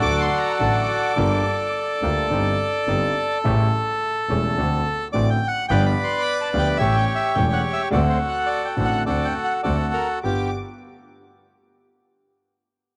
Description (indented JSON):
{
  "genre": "tango",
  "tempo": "106 BPM",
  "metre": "4/4",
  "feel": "rubato",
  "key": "unclear",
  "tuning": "A4 = 440 Hz",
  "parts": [
    { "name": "bandoneon", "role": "melody", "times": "0.0-10.5 s", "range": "F#4 to C6", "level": "-24 LUFS", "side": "equal", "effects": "none" },
    { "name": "rich studio violin section", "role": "second line", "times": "0.0-1.9, 10.2-10.5 s", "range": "A5 to D6", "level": "-33 LUFS", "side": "equal", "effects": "none" },
    { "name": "warm concert grand piano", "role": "accompaniment", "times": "0.0-10.5 s", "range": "E1 to G4", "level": "-28 LUFS", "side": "equal", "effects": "none" },
    { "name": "bandoneon", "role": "stabs", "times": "0.0-10.5 s", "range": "A3 to A4", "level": "-38 LUFS", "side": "equal", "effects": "none" },
    { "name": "clear double bass", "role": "bass", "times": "0.0-10.5 s", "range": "E1 to D2", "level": "-27 LUFS", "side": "equal", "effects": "none" }
  ],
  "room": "moderate plate reverb, RT60 2.8 s",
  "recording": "none",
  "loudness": "-21 LUFS",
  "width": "mono",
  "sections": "0.0-10.2 A section; 10.2-12.5 B section",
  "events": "none",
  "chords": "0.0 D; 1.2 Gm7; 2.3 Cmadd9/G; 3.4 A7; 4.6 D7; 5.7 G7; 6.8 A7; 7.9 D7; 10.2 G7"
}